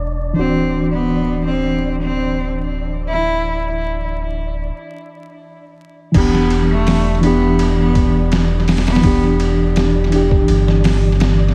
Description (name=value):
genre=trip hop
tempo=83 BPM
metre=4/4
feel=straight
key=E minor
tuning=A4 = 440 Hz
part: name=mellow reed electric piano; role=accompaniment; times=0.0-11.5 s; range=E3 to G4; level=-21 LUFS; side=equal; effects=harmonic tremolo, tape echo
part: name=round analog bass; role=bass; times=0.0-11.5 s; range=D1 to G1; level=-21 LUFS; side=equal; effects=none
part: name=wind-like tuned noise texture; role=texture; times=0.0-11.5 s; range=D4 to D5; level=-33 LUFS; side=equal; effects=built-in reverb
part: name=clear cello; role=melody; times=0.4-9.3 s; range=A3 to E4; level=-23 LUFS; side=equal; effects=tape echo
part: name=trip hop sampler-style drum kit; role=drums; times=6.1-11.4 s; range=crash cymbal, hi-hat, kick drum, ride cymbal, snare drum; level=-21 LUFS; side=equal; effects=overdrive, small room ambience, tape echo
room=light reverb, digital ambience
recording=echo-heavy mix, vinyl crackle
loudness=-16 LUFS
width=mono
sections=0.0-6.1 A section; 6.1-11.5 B section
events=break 4.7-6.1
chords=0.4 Dadd9; 6.1 Em7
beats=| 0.36 1.08 1.81 2.53 | 3.25 3.97 4.70 5.42 | 6.14 6.87 7.59 8.31 | 9.03 9.76 10.48 11.20